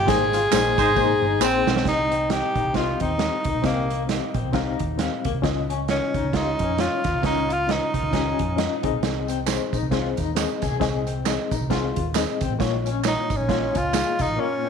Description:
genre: uptempo 1960s-style soul.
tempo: 134 BPM.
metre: 4/4.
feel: swing 58% on 8ths.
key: unclear.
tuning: A4 = 440 Hz.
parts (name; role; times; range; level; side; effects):
breathy tenor saxophone; melody; 0.0-8.9, 13.1-14.7 s; Bb3 to Ab4; -24 LUFS; equal; tape echo.
hollow-body short-scale picked electric bass; bass; 0.0-14.4 s; G1 to F2; -28 LUFS; equal; none.
reed electric piano; accompaniment; 0.1-14.7 s; Ab2 to F5; -27 LUFS; left 12 dB; fast tremolo.
electric guitar through a small old amp; riff; 0.1-14.7 s; Bb3 to Ab4; -30 LUFS; left 12 dB; tremolo.
vintage drum kit; drums; 0.1-14.3 s; hi-hat, kick drum, snare drum; -26 LUFS; right 7 dB; none.
tambourine and handclaps; percussion; 0.1-1.8, 9.0-14.3 s; none; -32 LUFS; right 15 dB; none.
bright saxophone section; second line; 0.8-1.1 s; Ab3 to C5; -27 LUFS; right 12 dB; tape echo.
room: moderate plate reverb, RT60 1.4 s, small room ambience.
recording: 1960s-style stereo with parts hard left and right.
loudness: -20 LUFS.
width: side -6 dB against mid.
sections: 0.0-1.9 A section; 1.9-14.7 B section.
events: drum fill 1.0-1.9.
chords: 0.1 Abadd9; 1.9 Cm; 5.4 Dbadd9; 8.8 Ab; 12.6 Bbm7.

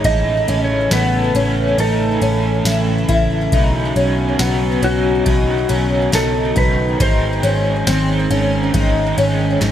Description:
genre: dream pop.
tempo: 69 BPM.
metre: 4/4.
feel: straight.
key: unclear.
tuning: A4 = 444 Hz.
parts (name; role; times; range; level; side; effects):
mellow electric guitar; melody; 0.0-9.7 s; F#4 to D#5; -22 LUFS; right 1 dB; digital delay.
overdriven electric guitar; accompaniment; 0.0-9.7 s; G#2 to B#4; -24 LUFS; right 3 dB; tremolo, analog chorus.
warbly tape-like pad; sustained chords; 0.0-9.7 s; C#3 to A4; -22 LUFS; right 1 dB; chorus, built-in reverb.
picked twelve-string acoustic guitar; arpeggios; 0.0-9.7 s; B3 to E4; -20 LUFS; left 2 dB; analog chorus, digital delay.
vintage muted picked electric bass; bass; 0.0-9.7 s; G#1 to B1; -20 LUFS; equal; none.
booming analog drum machine; drums; 0.0-9.7 s; kick drum, ride cymbal, snare drum, tambourine; -21 LUFS; equal; none.
room: moderate plate reverb, RT60 3.5 s.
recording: bright 1980s-style digital production.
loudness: -14 LUFS.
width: side -10 dB against mid.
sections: 0.0-9.7 A section.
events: none.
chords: 0.0 A; 3.5 Badd9; 7.0 G#.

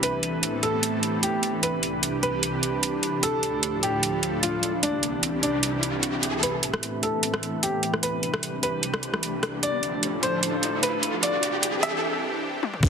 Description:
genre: heavy wobble dubstep.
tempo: 150 BPM.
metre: 4/4.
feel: swing 54% on 16ths, half-time.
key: unclear.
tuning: A4 = 439 Hz.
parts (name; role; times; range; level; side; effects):
clear grand piano; melody; 0.0-12.0 s; D4 to E5; -28 LUFS; left 1 dB; low-pass filter, digital delay.
supersaw pad; sustained chords; 0.0-12.9 s; C2 to A4; -30 LUFS; equal; sidechain pumping, low-pass filter.
dubstep drum kit; drums; 0.0-12.9 s; crash cymbal, hi-hat, rim click, toms; -25 LUFS; right 2 dB; none.
warbly tape-like pad; texture; 0.0-12.0 s; A3 to B5; -32 LUFS; right 2 dB; chorus, built-in reverb, sidechain pumping.
riser and impact; sound effects; 4.5-12.9 s; none; -32 LUFS; equal; none.
wobble bass; bass; 12.8-12.9 s; A1; -26 LUFS; right 1 dB; chorus, overdrive.
electronic kick drum; drums; 12.8-12.9 s; none; -17 LUFS; equal; soft clipping on kick.
room: moderate lush hall reverb, RT60 2.1 s.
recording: dense, heavily limited modern master, high-pass filter.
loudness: -23 LUFS.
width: side -6 dB against mid.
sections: 0.0-6.4 A section; 6.4-12.8 B section.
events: riser 4.5-6.4, 6.4-12.0; build-up 6.4-12.8; filter sweep on supersaw synth 6.4-12.8; filter sweep on grand piano 6.4-12.8; break 12.0-12.8; drum fill 12.6.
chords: 0.0 Amadd9; 1.6 Cadd9; 3.2 Dm; 4.8 Cadd9; 6.4 Amadd9; 8.0 Cadd9; 9.6 Dm; 11.2 Cadd9.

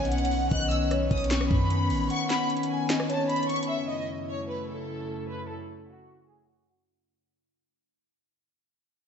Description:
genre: hip hop, trap.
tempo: 151 BPM.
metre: 4/4.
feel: half-time.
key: F# dorian.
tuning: A4 = 440 Hz.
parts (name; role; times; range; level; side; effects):
rich studio violin section; melody; 0.0-6.8 s; F#4 to F#6; -32 LUFS; equal; low-pass filter, analog delay.
hollow clarinet-like synth lead; second line; 0.0-3.3 s; C#5 to F#5; -33 LUFS; equal; chorus, analog delay.
airy breathy pad; sustained chords; 0.0-6.8 s; F#2 to E4; -30 LUFS; left 2 dB; chorus, low-pass filter.
clean 808-style bass; bass; 0.0-2.1 s; A1 to F#2; -28 LUFS; equal; none.
trap drum kit; drums; 0.1-3.7 s; handclaps, hi-hat, kick drum, rim click, snare drum; -31 LUFS; equal; none.
room: wet lush hall reverb, RT60 2.0 s.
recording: dreamy mix soaked in reverb, nothing above 8.0 kHz.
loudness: -25 LUFS.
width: side -7 dB against mid.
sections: 0.0-3.7 A section; 3.7-6.9 B section.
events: kick muted 2.1-3.7; fade-out 3.7-6.9; filter sweep 3.7-6.9.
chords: 0.0 Badd9; 3.7 F#m7.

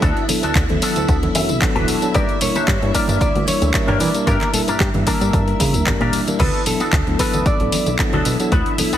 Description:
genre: nu-disco, nu disco.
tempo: 113 BPM.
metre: 4/4.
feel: swing 54% on 16ths.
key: D major.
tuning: A4 = 440 Hz.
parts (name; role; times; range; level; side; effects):
string machine, full ensemble; sustained chords; 0.0-9.0 s; E4 to E5; -27 LUFS; equal; ensemble chorus, sidechain pumping.
electric guitar with an envelope filter; riff; 0.0-9.0 s; Bb3 to A5; -24 LUFS; left 2 dB; analog chorus.
chorused synth bass; bass; 0.0-9.0 s; D1 to E3; -21 LUFS; equal; none.
electronic kick drum; drums; 0.0-8.6 s; none; -21 LUFS; equal; studio reverb.
house drum kit; drums; 0.0-9.0 s; crash cymbal, handclaps, hi-hat, tambourine; -23 LUFS; left 1 dB; studio reverb.
mellow tine electric piano; accompaniment; 0.3-8.9 s; F#3 to Bb4; -24 LUFS; left 1 dB; medium stereo tremolo, sidechain pumping.
congas; percussion; 0.3-8.9 s; none; -28 LUFS; right 4 dB; none.
direct-recorded clean electric guitar; melody; 2.2-8.0 s; G4 to D5; -25 LUFS; equal; tape echo.
room: light reverb, digital ambience.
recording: heavily compressed radio sound, multiband compression.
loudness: -15 LUFS.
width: side -11 dB against mid.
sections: 0.0-9.0 A section.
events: clean electric guitar fill 1.1-2.1.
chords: 0.0 D6; 2.1 Gm; 6.4 D6.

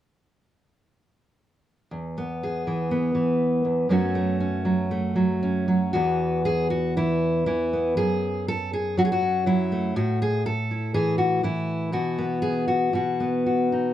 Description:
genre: folk, solo fingerstyle acoustic guitar.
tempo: 120 BPM.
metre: 4/4.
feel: rubato.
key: E major.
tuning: A4 = 440 Hz.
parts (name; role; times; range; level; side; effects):
fingerpicked steel-string acoustic guitar; solo; 1.9-13.9 s; E2 to A4; -22 LUFS; equal; none.
room: light reverb.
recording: dark, warm production.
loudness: -22 LUFS.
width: side -12 dB against mid.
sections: 1.9-5.9 A section; 5.9-13.9 B section.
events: none.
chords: 1.9 E; 3.9 F#m; 5.9 Esus2; 8.0 F#m; 10.0 A5; 11.9 Bsus4; 12.9 B.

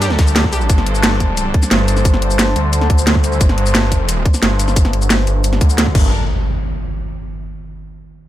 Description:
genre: dark technical drum and bass.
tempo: 177 BPM.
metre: 4/4.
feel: straight.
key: G minor.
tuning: A4 = 440 Hz.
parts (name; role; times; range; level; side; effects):
dark studio string section; sustained chords; 0.0-6.1 s; G3 to C5; -23 LUFS; left 1 dB; sidechain pumping, low-pass filter.
analog pluck; arpeggios; 0.0-0.6 s; G4; -26 LUFS; left 2 dB; chorus, cassette tape, sidechain pumping, digital delay.
wide detuned saw bass; bass; 0.0-6.1 s; G1 to G2; -16 LUFS; equal; chorus, overdrive, sidechain pumping.
crunchy breakbeat drum kit; drums; 0.0-0.6 s; hi-hat, snare drum; -26 LUFS; equal; high-pass filter on hats, small room ambience, high-pass filter on snare, high-pass filter on room.
drum and bass drum kit; drums; 0.0-6.0 s; crash cymbal, hi-hat, shaker, snare drum; -18 LUFS; right 1 dB; overdrive, small room ambience.
electronic kick drum; drums; 0.2-6.0 s; none; -13 LUFS; equal; overdrive, small room ambience.
impact; sound effects; 6.0-7.3 s; none; -21 LUFS; equal; none.
room: small room ambience.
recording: none.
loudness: -12 LUFS.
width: side -13 dB against mid.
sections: 0.0-6.1 A section; 6.1-7.5 B section.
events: filter sweep on string section 0.0-6.1.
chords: 0.0 Gmadd9; 6.1 N.C..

